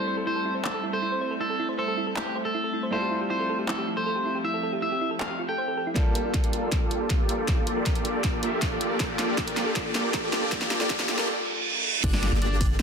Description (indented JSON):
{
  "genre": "future bass",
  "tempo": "158 BPM",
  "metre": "4/4",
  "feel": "half-time",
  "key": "G dorian",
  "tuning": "A4 = 440 Hz",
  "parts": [
    { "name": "electric guitar at the edge of break-up", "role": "melody", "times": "0.0-5.9, 12.0-12.8 s", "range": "D4 to G5", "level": "-29 LUFS", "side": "equal", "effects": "sidechain pumping, tape echo" },
    { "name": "bright grand piano", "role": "accompaniment", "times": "0.0-11.9 s", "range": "G3 to A4", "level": "-36 LUFS", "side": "equal", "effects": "sidechain pumping, ping-pong delay" },
    { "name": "airy breathy pad", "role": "sustained chords", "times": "0.0-12.0 s", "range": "F3 to E5", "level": "-35 LUFS", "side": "equal", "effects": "chorus, sidechain pumping" },
    { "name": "thumb-piano-like synth pluck", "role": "arpeggios", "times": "0.1-11.2 s", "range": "E4 to C5", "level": "-34 LUFS", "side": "right 4 dB", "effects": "chorus, sidechain pumping, ping-pong delay" },
    { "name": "pop drum kit", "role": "drums", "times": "0.6-12.8 s", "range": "crash cymbal, handclaps, hi-hat, snare drum", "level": "-31 LUFS", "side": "equal", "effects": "high-pass filter on cymbals, high-pass filter on snare, high-pass filter on hats, high-pass filter on room" },
    { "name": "supersaw chords", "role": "riff", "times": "6.0-12.8 s", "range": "Bb3 to E5", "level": "-28 LUFS", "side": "equal", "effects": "analog chorus, sidechain pumping, low-pass filter, ping-pong delay" },
    { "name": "electronic kick drum", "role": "drums", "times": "6.0-12.7 s", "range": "none", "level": "-27 LUFS", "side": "equal", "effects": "none" },
    { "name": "riser, reverse cymbal and impact", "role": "sound effects", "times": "8.4-12.8 s", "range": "none", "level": "-32 LUFS", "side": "right 2 dB", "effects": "none" },
    { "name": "long sustained 808-style bass", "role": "bass", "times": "12.0-12.8 s", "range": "G1", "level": "-26 LUFS", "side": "equal", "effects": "sidechain pumping" }
  ],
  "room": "moderate digital room reverb, RT60 1.1 s, digital ambience",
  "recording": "dense, heavily limited modern master, high-pass filter",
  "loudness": "-24 LUFS",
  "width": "side -6 dB against mid",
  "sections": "0.0-6.0 A section; 6.0-12.0 B section",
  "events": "build-up 6.0-12.0; drum fill 6.0-11.3; filter sweep on supersaw synth 6.0-12.0; filter sweep 6.0-12.0; riser 8.4-11.3; reverse cymbal 11.3-12.0; impact 12.0-12.8",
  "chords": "0.0 Am7; 2.9 Fmaj9; 6.0 Gm9"
}